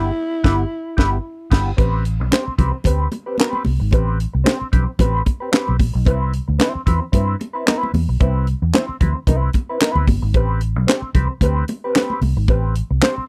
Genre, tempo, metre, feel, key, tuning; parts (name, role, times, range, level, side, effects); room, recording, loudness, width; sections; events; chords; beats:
funk; 112 BPM; 4/4; swing 56% on 16ths; A4 = 440 Hz
breathy alto saxophone; melody; 0.0-1.5 s; E4; -27 LUFS; equal
mellow electric guitar; accompaniment; 0.0-13.2 s; B3 to C5; -25 LUFS; equal; wah
vintage muted fingered electric bass; bass; 0.0-13.2 s; G1 to G2; -21 LUFS; equal
tight funk drum kit; drums; 0.4-13.2 s; crash cymbal, handclaps, hi-hat, kick drum, snare drum; -19 LUFS; equal
congas; percussion; 2.3-13.2 s; -27 LUFS; equal
little or no reverb; dry, close 1970s-style studio recording; -19 LUFS; mono
0.0-1.8 A section; 1.8-13.3 B section
band accent 0.0-1.8
0.0 G6; 1.8 Am9; 6.1 Cmaj7; 10.3 Am9
0.17 0.71 1.25 | 1.78 2.32 2.85 3.39 | 3.93 4.46 5.00 5.53 | 6.07 6.60 7.14 7.67 | 8.21 8.74 9.28 9.81 | 10.35 10.88 11.42 11.95 | 12.49 13.02